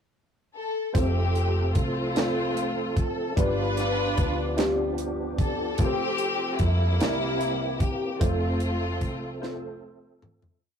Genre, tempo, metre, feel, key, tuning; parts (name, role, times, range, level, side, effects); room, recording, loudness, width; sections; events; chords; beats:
slow gospel; 50 BPM (dotted quarters); 6/8; straight; F major; A4 = 440 Hz
clear studio string section; melody; 0.5-9.8 s; G3 to B4; -29 LUFS; left 3 dB
dark baby grand piano; accompaniment; 0.9-10.7 s; G2 to C5; -31 LUFS; left 1 dB
hollow-body short-scale fingered electric bass; bass; 0.9-10.6 s; F1 to F2; -29 LUFS; right 1 dB
tight funk drum kit; drums; 0.9-10.6 s; hi-hat, kick drum, snare drum, toms; -26 LUFS; equal
tonewheel organ; sustained chords; 1.0-10.6 s; E3 to A4; -33 LUFS; right 3 dB; slow rotary speaker, overdrive, chorus vibrato
wet booth ambience, RT60 0.2 s; rough rehearsal-room recording, warm saturation; -24 LUFS; side -8 dB against mid
0.0-0.9 pickup bar; 0.9-10.6 chorus
fade-out 8.2-10.6; drum fill 9.4-10.6
0.0 N.C.; 0.9 F; 3.4 G7; 5.8 F/C; 7.0 C7; 8.2 F
| 0.95 2.16 | 3.37 4.58 | 5.79 7.01 | 8.22 9.43